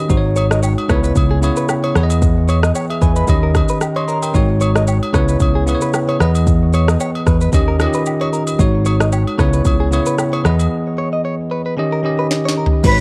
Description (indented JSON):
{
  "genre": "afrobeats",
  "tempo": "113 BPM",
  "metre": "4/4",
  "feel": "swing 55% on 16ths",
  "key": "C# minor",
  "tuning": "A4 = 440 Hz",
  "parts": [
    { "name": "bell-like tine electric piano", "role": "accompaniment", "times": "0.0-13.0 s", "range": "C#3 to B#5", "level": "-21 LUFS", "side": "equal", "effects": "cassette tape" },
    { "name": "fingered electric bass", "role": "bass", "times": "0.1-13.0 s", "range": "G#1 to E2", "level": "-18 LUFS", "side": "equal", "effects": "none" },
    { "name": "afro-pop drum kit", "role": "drums", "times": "0.1-13.0 s", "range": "crash cymbal, kick drum, rim click, shaker, snare drum, toms", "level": "-20 LUFS", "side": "equal", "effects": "cassette tape" },
    { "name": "direct-recorded clean electric guitar", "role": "riff", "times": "0.4-12.7 s", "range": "G#4 to D#5", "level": "-27 LUFS", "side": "equal", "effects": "phaser, cassette tape, tape echo" },
    { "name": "agogo bells and woodblock", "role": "percussion", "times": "0.4-10.7 s", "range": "none", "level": "-30 LUFS", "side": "equal", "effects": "none" },
    { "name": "breathy jazz flute", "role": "melody", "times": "12.8-13.0 s", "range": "B4", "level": "-17 LUFS", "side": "equal", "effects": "none" }
  ],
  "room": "little or no reverb",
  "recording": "home recording on cassette",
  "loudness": "-16 LUFS",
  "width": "mono",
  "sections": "0.0-12.8 A section",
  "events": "break 10.7-12.8; drum fill 12.3-12.8",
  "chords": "0.1 G#7sus4; 0.9 C#m7; 2.0 Emaj7; 3.3 D#7; 4.3 G#7sus4; 5.1 C#m7; 6.2 Emaj7; 7.5 D#7; 8.6 G#7sus4; 9.4 C#m7; 10.4 Emaj7; 11.8 D#7"
}